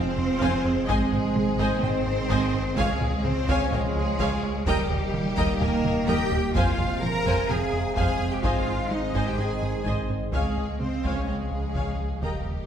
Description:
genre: cinematic, hybrid orchestral and electronic film score.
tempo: 127 BPM.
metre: 4/4.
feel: straight.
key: unclear.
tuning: A4 = 441 Hz.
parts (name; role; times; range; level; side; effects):
rich studio violin section; melody; 0.0-12.7 s; G4 to Bb5; -34 LUFS; left 5 dB; none.
rich studio viola section; accompaniment; 0.0-12.4 s; Bb4 to F5; -33 LUFS; right 1 dB; none.
mellow French horn section; sustained chords; 0.0-12.7 s; G4 to F5; -37 LUFS; left 4 dB; none.
warbly tape-like pad; sustained chords; 0.0-12.7 s; Db3 to F5; -33 LUFS; right 2 dB; chorus, built-in reverb.
warm trombone section; sustained chords; 0.0-12.7 s; Bb2 to Bb3; -36 LUFS; right 2 dB; none.
tight sequencer bass; riff; 0.0-12.6 s; Db2 to Ab3; -31 LUFS; right 1 dB; none.
rich studio double bass section; bass; 0.0-12.3 s; F1 to F2; -34 LUFS; right 2 dB; none.
rich symphonic cello section; bass; 0.0-12.7 s; G3 to Bb4; -29 LUFS; right 3 dB; none.
warm sub bass; bass; 0.0-12.7 s; Eb1 to Db2; -34 LUFS; equal; none.
warm symphonic violin section; second line; 0.4-12.4 s; Eb5 to Bb5; -34 LUFS; left 4 dB; none.
taiko ensemble; drums; 0.4-12.7 s; none; -32 LUFS; equal; none.
room: wet scoring stage reverb, RT60 1.7 s.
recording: heard from further back in the room.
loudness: -22 LUFS.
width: side -8 dB against mid.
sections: 0.0-12.7 A section.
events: drum fill 5.8-6.6.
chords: 0.0 Fm; 0.9 Ab; 2.8 Db; 4.7 Eb; 6.6 Fm; 8.4 Ab; 10.3 Db.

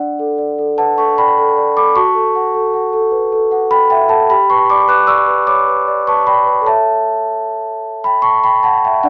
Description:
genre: classical, lullaby for celesta.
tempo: 51 BPM (dotted quarters).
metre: 6/8.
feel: straight.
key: unclear.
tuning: A4 = 440 Hz.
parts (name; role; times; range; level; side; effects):
large celesta; solo; 0.0-9.1 s; D4 to F#6; -14 LUFS; equal; none.
room: moderate small room reverb, RT60 0.5 s.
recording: small speaker sound.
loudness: -14 LUFS.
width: mono.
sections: 0.0-9.1 A section.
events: none.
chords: 0.0 D; 2.0 F#m; 4.3 G; 6.7 A.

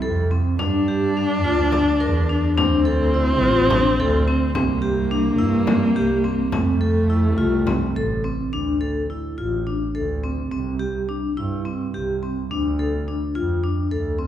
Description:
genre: contemporary instrumental, chamber music in an uneven meter.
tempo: 212 BPM (eighths).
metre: 7/8.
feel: straight.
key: D minor.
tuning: A4 = 440 Hz.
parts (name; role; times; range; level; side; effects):
dark viola; second line; 0.0-8.3 s; A3 to E4; -22 LUFS; equal; none.
vibraphone with medium hard mallets; arpeggios; 0.0-14.3 s; C4 to Bb4; -23 LUFS; left 2 dB; none.
rich double bass; bass; 0.0-14.3 s; A1 to G2; -23 LUFS; right 2 dB; none.
frame drum; percussion; 0.6-8.1 s; none; -29 LUFS; left 2 dB; none.
room: wet recital hall reverb, RT60 1.6 s.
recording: heard from further back in the room.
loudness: -18 LUFS.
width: side -11 dB against mid.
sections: 0.0-8.5 A section; 8.5-14.3 B section.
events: none.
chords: 0.0 Fmaj7; 0.6 G5; 2.6 D7(no3); 4.6 C7(no3); 6.5 F; 8.5 D5; 10.5 C5; 12.5 Dm.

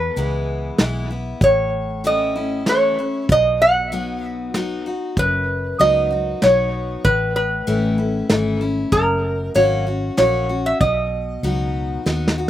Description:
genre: honky-tonk and classic country.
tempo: 96 BPM.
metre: 3/4.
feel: straight.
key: unclear.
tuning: A4 = 436 Hz.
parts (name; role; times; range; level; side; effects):
lap resonator guitar; melody; 0.0-12.3 s; A#4 to F#5; -18 LUFS; right 1 dB; none.
picked steel-string acoustic guitar; accompaniment; 0.0-12.5 s; E2 to F#4; -24 LUFS; left 3 dB; slapback echo.
vintage muted fingered electric bass; bass; 0.0-12.5 s; F#1 to D#2; -25 LUFS; equal; none.
soft brush drum kit; drums; 0.2-12.4 s; hi-hat, kick drum, snare drum; -19 LUFS; equal; none.
room: little or no reverb.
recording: recorded outdoors, with no room sound.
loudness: -17 LUFS.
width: side -12 dB against mid.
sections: 0.0-12.5 A section.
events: drum fill 12.1-12.5.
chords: 0.0 E; 1.4 A; 3.3 B; 7.1 A; 8.9 F#; 10.8 B.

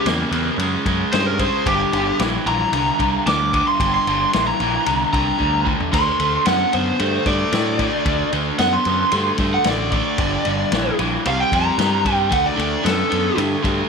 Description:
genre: blues rock power trio and southern rock.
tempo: 113 BPM.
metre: 4/4.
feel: straight.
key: G minor.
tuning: A4 = 440 Hz.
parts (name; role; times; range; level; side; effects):
lead guitar through a small cranked amp; melody; 0.0-13.4 s; G4 to D6; -20 LUFS; equal; overdrive.
overdriven electric guitar; riff; 0.0-13.9 s; G2 to B3; -21 LUFS; right 1 dB; none.
growling picked electric bass; bass; 0.1-13.8 s; G1 to A2; -24 LUFS; equal; overdrive, tube saturation.
vintage drum kit; drums; 0.1-13.8 s; crash cymbal, kick drum, ride cymbal, snare drum, toms; -26 LUFS; left 3 dB; none.
room: light reverb.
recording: 1960s-style stereo.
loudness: -16 LUFS.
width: side -5 dB against mid.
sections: 0.0-13.9 A section.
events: lead electric guitar solo 0.0-13.9; drum fill 5.4-5.9.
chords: 0.0 C#dim7; 1.7 Gm; 5.9 D7; 10.2 Gm; 11.3 C5; 12.3 D.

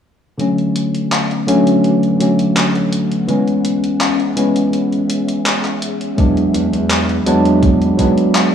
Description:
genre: vaporwave.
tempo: 83 BPM.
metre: 4/4.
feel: straight.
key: B dorian.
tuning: A4 = 440 Hz.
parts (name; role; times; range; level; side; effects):
tine electric piano; accompaniment; 0.4-8.5 s; D3 to D4; -14 LUFS; equal; wide subtle chorus, vintage 12-bit sampler grit, tape echo.
soft string machine; sustained chords; 0.4-8.5 s; B3 to D6; -27 LUFS; left 1 dB; phaser, ensemble chorus.
gated 80s digital drum machine; drums; 0.4-8.5 s; handclaps, hi-hat; -20 LUFS; left 1 dB; gated reverb, overdrive.
modern bright fingered electric bass; bass; 6.2-8.1 s; E2 to G#2; -20 LUFS; equal; tube saturation.
electronic kick drum; drums; 6.2-8.1 s; none; -16 LUFS; equal; overdrive.
room: light reverb, digital ambience.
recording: rough home demo mix, small room ambience.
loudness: -13 LUFS.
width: side -8 dB against mid.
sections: 0.4-8.5 A section.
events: filter sweep on string machine 0.4-8.5.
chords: 0.4 Bm7; 3.3 E69; 6.2 E7.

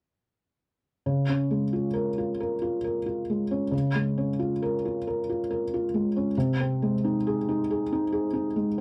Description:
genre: neoclassical minimalist piano.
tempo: 46 BPM (dotted quarters).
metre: 6/8.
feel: rubato.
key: unclear.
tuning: A4 = 440 Hz.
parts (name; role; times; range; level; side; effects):
felt-muted upright piano; solo; 1.1-8.8 s; C3 to Bb4; -27 LUFS; equal; none.
room: light reverb.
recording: dry, close 1970s-style studio recording.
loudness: -27 LUFS.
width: mono.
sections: 1.0-8.8 A section.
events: none.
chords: 1.0 Db6; 6.3 Ab/C.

